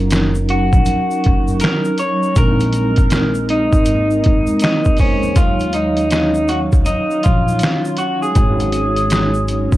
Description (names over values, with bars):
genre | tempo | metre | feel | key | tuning
lo-fi hip hop | 80 BPM | 4/4 | swing 64% on 16ths | Eb dorian | A4 = 440 Hz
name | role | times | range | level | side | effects
vibraphone with soft mallets | accompaniment | 0.0-9.8 s | Gb3 to F5 | -21 LUFS | right 1 dB | none
granular cloud pad | sustained chords | 0.0-9.8 s | Eb3 to F5 | -27 LUFS | equal | built-in reverb
upright bass | bass | 0.0-9.8 s | F1 to Fb2 | -20 LUFS | equal | none
trip hop sampler-style drum kit | drums | 0.1-9.8 s | finger snaps, hi-hat, kick drum, snare drum | -16 LUFS | equal | overdrive
egg shaker | percussion | 0.1-9.8 s | none | -38 LUFS | left 3 dB | none
electric guitar through a small old amp | melody | 0.5-9.7 s | Db4 to Db5 | -19 LUFS | equal | spring reverb
room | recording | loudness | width
light reverb | none | -13 LUFS | side -16 dB against mid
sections
0.0-5.4 A section; 5.4-9.8 B section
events
none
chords
0.0 Gb6; 2.4 Bb9sus4; 5.4 Ebm9; 8.4 Ab7sus4